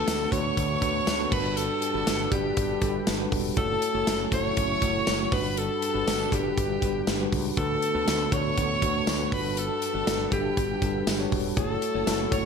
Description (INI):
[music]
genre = 1980s-style pop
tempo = 120 BPM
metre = 4/4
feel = straight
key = unclear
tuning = A4 = 443 Hz
[part]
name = bright alto saxophone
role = melody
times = 0.0-12.5 s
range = G4 to C#5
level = -29 LUFS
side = left 1 dB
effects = none
[part]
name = warm studio violin section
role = second line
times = 0.0-12.5 s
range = G5 to C#6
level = -36 LUFS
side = equal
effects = ping-pong delay
[part]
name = bell-like tine electric piano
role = accompaniment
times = 0.0-12.5 s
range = G2 to D5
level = -29 LUFS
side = equal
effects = fast stereo tremolo
[part]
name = chorused pulse-width pad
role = sustained chords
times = 0.0-12.5 s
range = D3 to B4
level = -36 LUFS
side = equal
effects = none
[part]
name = fretless electric bass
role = bass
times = 0.0-12.5 s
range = E1 to D2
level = -34 LUFS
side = equal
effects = lush chorus
[part]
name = modern studio drum kit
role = drums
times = 0.1-12.4 s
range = crash cymbal, hi-hat, kick drum, snare drum, tambourine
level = -29 LUFS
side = equal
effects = gated reverb
[sound]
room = moderate plate reverb, RT60 1.0 s, studio reverb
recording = bright 1980s-style digital production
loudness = -24 LUFS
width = side -6 dB against mid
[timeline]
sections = 0.0-12.5 A section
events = none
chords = 0.0 D6; 1.3 Gmaj7; 3.6 F#m7; 5.3 Gmaj7; 7.6 D6; 9.3 Gmaj7; 11.6 F#m7